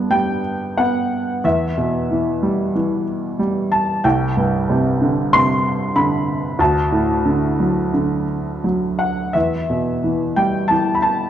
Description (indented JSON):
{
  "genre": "classical, lyrical solo piano",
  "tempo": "84-96 BPM",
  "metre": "4/4",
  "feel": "rubato",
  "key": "unclear",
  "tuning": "A4 = 436 Hz",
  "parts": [
    { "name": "warm upright piano", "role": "solo", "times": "0.0-11.3 s", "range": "C2 to C6", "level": "-16 LUFS", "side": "equal", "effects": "none" }
  ],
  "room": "moderate scoring stage reverb, RT60 2.0 s",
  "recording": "dark, warm production",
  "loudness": "-16 LUFS",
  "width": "side -10 dB against mid",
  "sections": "0.0-11.3 A section",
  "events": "none",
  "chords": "0.0 G; 1.4 Em; 4.0 Csus2; 6.6 D; 9.3 Em"
}